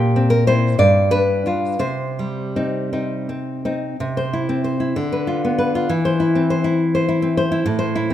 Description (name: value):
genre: romantic piece for solo classical guitar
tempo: 54-70 BPM (dotted quarters)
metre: 6/8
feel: rubato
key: C minor, C major from 4.0 s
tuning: A4 = 440 Hz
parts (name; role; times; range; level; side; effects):
- nylon-string guitar; solo; 0.0-8.1 s; G2 to D5; -17 LUFS; left 1 dB; none
room: moderate scoring stage reverb, RT60 2.1 s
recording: minimal, uncompressed stereo recording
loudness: -17 LUFS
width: side -11 dB against mid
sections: 0.0-4.0 A section; 4.0-8.1 B section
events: none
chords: 0.0 C7/Bb; 0.8 G7; 1.8 Cm; 4.0 C; 4.9 Dm6; 5.9 C/E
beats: 0.79 | 1.81 2.91 | 3.98 4.95 | 5.89 6.79 | 7.66